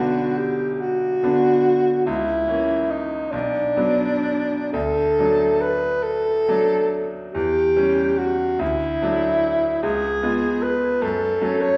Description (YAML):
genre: classical, romantic duo for alto saxophone and grand piano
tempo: 40-52 BPM (dotted quarters)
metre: 6/8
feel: rubato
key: B minor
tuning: A4 = 439 Hz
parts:
  - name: mellow alto saxophone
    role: melody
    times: 0.0-11.8 s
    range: D4 to C#5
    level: -22 LUFS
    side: equal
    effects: none
  - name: bright concert grand piano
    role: accompaniment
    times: 0.0-11.8 s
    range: B1 to E#4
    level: -27 LUFS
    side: equal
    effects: none
room: wet recital hall reverb, RT60 1.3 s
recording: heard from further back in the room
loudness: -21 LUFS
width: mono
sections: 0.0-11.8 A section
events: none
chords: 0.0 Bm; 2.1 A#dim/C#; 3.3 Bm; 4.7 D; 7.3 C#dim/E; 8.6 D; 9.8 C#7; 11.0 F#m